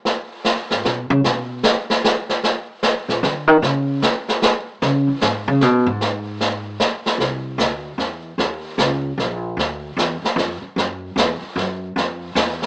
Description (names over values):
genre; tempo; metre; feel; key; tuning
jazz piano trio; 151 BPM; 3/4; swing 65% on 8ths; E major; A4 = 440 Hz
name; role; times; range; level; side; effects
vintage brush drum kit; drums; 0.1-12.7 s; brushed snare drum, hi-hat, snare drum; -18 LUFS; equal; none
upright bass; bass; 0.7-12.7 s; Bb1 to D#3; -20 LUFS; equal; none
room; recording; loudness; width
moderate club reverb, RT60 0.7 s; small speaker sound; -17 LUFS; side -30 dB against mid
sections
0.0-7.2 A section; 7.2-12.7 B section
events
upright bass solo 0.0-7.2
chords
none